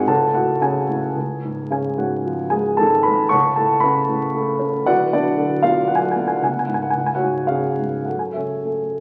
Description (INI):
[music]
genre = classical, lyrical solo piano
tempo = 101-118 BPM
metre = 3/4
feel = rubato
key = unclear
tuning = A4 = 440 Hz
[part]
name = dark grand piano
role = solo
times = 0.0-9.0 s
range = D1 to C#6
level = -20 LUFS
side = equal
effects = none
[sound]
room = wet recital hall reverb, RT60 1.4 s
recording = very old 78 rpm record, vinyl crackle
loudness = -20 LUFS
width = mono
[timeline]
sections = 0.0-8.1 A section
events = none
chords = 0.1 F#m/C#; 1.2 C#; 3.3 F#m/C#; 4.9 Bm/D; 6.4 C#5; 6.9 C#; 8.1 F#m